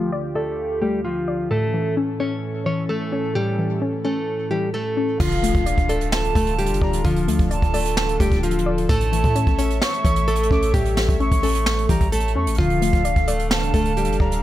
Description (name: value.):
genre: hip hop, trap.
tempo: 130 BPM.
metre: 4/4.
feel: half-time.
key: D harmonic minor.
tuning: A4 = 440 Hz.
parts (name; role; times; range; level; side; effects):
nylon-string guitar; melody; 0.0-14.4 s; F3 to C#5; -24 LUFS; equal; low-pass filter, digital delay.
soft round pluck; accompaniment; 0.0-14.4 s; A2 to D5; -26 LUFS; left 3 dB; chorus, low-pass filter.
warm analog pad; sustained chords; 0.0-14.4 s; D2 to F5; -29 LUFS; equal; chorus, low-pass filter.
silver concert flute; second line; 5.2-14.4 s; F5 to D6; -27 LUFS; right 2 dB; digital delay.
long sustained 808-style bass; bass; 5.2-14.4 s; D1 to A2; -24 LUFS; equal; none.
jazz brush drum kit; drums; 5.2-14.4 s; crash cymbal, hi-hat, kick drum, snare drum; -22 LUFS; equal; none.
impact; sound effects; 5.2-7.0 s; none; -32 LUFS; equal; none.
room: light reverb, small room ambience.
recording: none.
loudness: -18 LUFS.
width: side -13 dB against mid.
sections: 0.0-5.2 A section; 5.2-14.4 B section.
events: filter sweep 0.0-5.2; impact 5.2-7.0.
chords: 0.0 Dm; 1.5 A; 5.2 Dm; 8.9 A; 12.6 Dm.